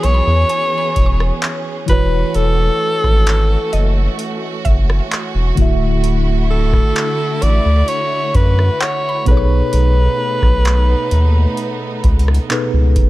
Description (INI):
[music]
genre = contemporary R&B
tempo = 65 BPM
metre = 4/4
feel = straight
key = unclear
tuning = A4 = 440 Hz
[part]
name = breathy alto saxophone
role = melody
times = 0.0-12.5 s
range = A4 to D5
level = -19 LUFS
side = equal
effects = tape echo
[part]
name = mellow tine electric piano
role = accompaniment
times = 0.0-13.1 s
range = B2 to E5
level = -22 LUFS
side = equal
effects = medium stereo tremolo
[part]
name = warm studio string section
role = sustained chords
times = 0.0-13.1 s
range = D3 to G#4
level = -26 LUFS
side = right 3 dB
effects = none
[part]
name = saturated sub bass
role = bass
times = 0.0-13.1 s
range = D1 to F#2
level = -14 LUFS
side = equal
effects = none
[part]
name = booming analog drum machine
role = drums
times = 0.0-13.1 s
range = handclaps, hi-hat, kick drum, rim click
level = -16 LUFS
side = equal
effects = none
[part]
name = mallet-like synth pluck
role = texture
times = 0.0-10.2 s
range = D#5 to C#6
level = -30 LUFS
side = equal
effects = chorus, tape echo
[sound]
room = little or no reverb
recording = echo-heavy mix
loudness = -13 LUFS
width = side -17 dB against mid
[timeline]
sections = 0.0-13.1 A section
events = none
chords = 0.0 E6; 1.9 A6/E; 5.6 Dadd9; 9.3 B13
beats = 0.50 1.42 | 2.35 3.27 4.19 5.11 | 6.04 6.96 7.88 8.81 | 9.73 10.65 11.57 12.50